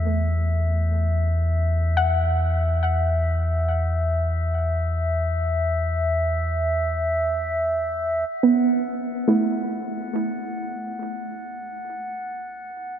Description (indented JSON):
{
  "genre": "ambient",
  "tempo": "free time",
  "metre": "none",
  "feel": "none",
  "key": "unclear",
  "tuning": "A4 = 439 Hz",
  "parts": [
    { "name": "soft round pluck", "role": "arpeggios", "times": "0.0-12.2 s", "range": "A3 to F#5", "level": "-24 LUFS", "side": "right 2 dB", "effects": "chorus, cassette tape, tape echo" },
    { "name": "warm sub bass", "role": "bass", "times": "0.0-8.2 s", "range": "E2", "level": "-22 LUFS", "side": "equal", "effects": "none" },
    { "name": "glass harmonica", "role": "texture", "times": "0.0-13.0 s", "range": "E5 to F#5", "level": "-27 LUFS", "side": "left 1 dB", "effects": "none" }
  ],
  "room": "moderate cathedral reverb, RT60 5.4 s",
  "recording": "none",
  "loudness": "-21 LUFS",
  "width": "side -9 dB against mid",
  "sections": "0.0-8.3 A section; 8.3-13.0 A section",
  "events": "fade-in on synth pluck 0.0-8.3; fade-in on glass harmonica 0.0-8.3",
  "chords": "0.0 E5; 8.3 B5",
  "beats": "free time"
}